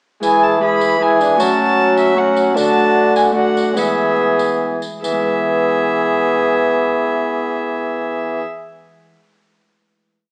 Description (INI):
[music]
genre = classical, renaissance-style consort dance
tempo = 137-155 BPM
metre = 3/4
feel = straight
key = E mixolydian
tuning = A4 = 440 Hz
[part]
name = warm violin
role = melody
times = 0.2-8.4 s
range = E5 to B5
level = -22 LUFS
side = equal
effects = none
[part]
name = warm viola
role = second line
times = 0.2-8.4 s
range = F#4 to G#4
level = -22 LUFS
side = equal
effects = none
[part]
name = Celtic harp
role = accompaniment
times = 0.2-9.3 s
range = D3 to E5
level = -27 LUFS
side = equal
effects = none
[part]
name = brilliant trombone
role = accompaniment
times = 0.2-8.4 s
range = B3 to E4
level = -23 LUFS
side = equal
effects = none
[part]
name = mellow bassoon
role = bass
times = 0.2-8.4 s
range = D3 to F#3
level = -21 LUFS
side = equal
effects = none
[part]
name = tambourine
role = percussion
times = 0.2-5.2 s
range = none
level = -35 LUFS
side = equal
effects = none
[sound]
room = wet stone room reverb, RT60 1.4 s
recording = small speaker sound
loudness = -16 LUFS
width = mono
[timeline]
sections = 0.2-5.0 A section; 5.0-7.7 final chord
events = slowing down 2.0-5.0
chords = 0.2 E; 1.4 F#m; 2.6 D; 3.8 E